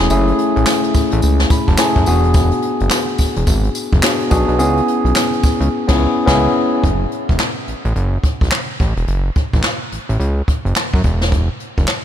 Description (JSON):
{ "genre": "R&B, new jack swing", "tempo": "107 BPM", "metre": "4/4", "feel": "swing 62% on 16ths", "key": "F# minor", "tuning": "A4 = 439 Hz", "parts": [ { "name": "tine electric piano", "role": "accompaniment", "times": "0.0-6.9 s", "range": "A3 to B5", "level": "-17 LUFS", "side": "left 2 dB", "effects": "none" }, { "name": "fat analog bass", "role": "bass", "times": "0.0-11.9 s", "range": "E1 to F#2", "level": "-16 LUFS", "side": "equal", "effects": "none" }, { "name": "jazz brush drum kit", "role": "drums", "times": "0.1-12.0 s", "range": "crash cymbal, handclaps, hi-hat, kick drum, snare drum, tambourine", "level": "-17 LUFS", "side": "equal", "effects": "none" } ], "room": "moderate cathedral reverb, RT60 4.9 s", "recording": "dreamy mix soaked in reverb", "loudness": "-13 LUFS", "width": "side -10 dB against mid", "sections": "0.0-6.8 A section; 6.8-12.0 B section", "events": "tine electric piano fill 1.2-2.3; kick muted 5.7-6.8; band accent 5.7-6.8", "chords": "0.0 F#m9; 2.1 E9; 4.6 C#m7; 6.8 F#m; 11.0 Esus2", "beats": "| 0.11 0.67 1.23 1.79 | 2.35 2.91 3.47 4.03 | 4.59 5.15 5.71 6.27 | 6.83 7.40 7.96 8.52 | 9.08 9.64 10.20 10.76 | 11.32 11.88" }